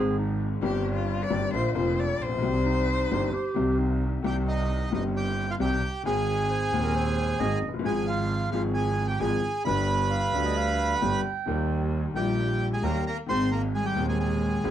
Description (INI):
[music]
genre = tango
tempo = 133 BPM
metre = 4/4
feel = rubato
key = C minor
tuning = A4 = 436 Hz
[part]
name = mellow clarinet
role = second line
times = 0.0-11.9 s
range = Eb4 to G5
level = -32 LUFS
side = right 4 dB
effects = none
[part]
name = warm upright piano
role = accompaniment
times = 0.0-14.7 s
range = Eb1 to Ab4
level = -29 LUFS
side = left 4 dB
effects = none
[part]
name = clear double bass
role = bass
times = 0.0-14.7 s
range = F1 to Eb2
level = -29 LUFS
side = right 2 dB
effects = none
[part]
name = warm cello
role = second line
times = 0.6-3.8, 12.2-14.7 s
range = G3 to D5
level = -30 LUFS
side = left 3 dB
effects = none
[part]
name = bandoneon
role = melody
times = 4.3-14.7 s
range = Eb4 to C6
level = -29 LUFS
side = right 3 dB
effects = none
[sound]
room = moderate studio reverb, RT60 0.6 s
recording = dark, warm production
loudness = -24 LUFS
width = side -10 dB against mid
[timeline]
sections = 0.0-4.2 A section; 4.2-14.7 B section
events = cello solo 0.0-4.2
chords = 0.0 Ab; 0.6 Cm/G; 1.5 Bb; 2.4 Cm; 6.0 Ab; 7.8 Fm/Ab; 9.7 G; 11.5 Eb; 13.3 Ab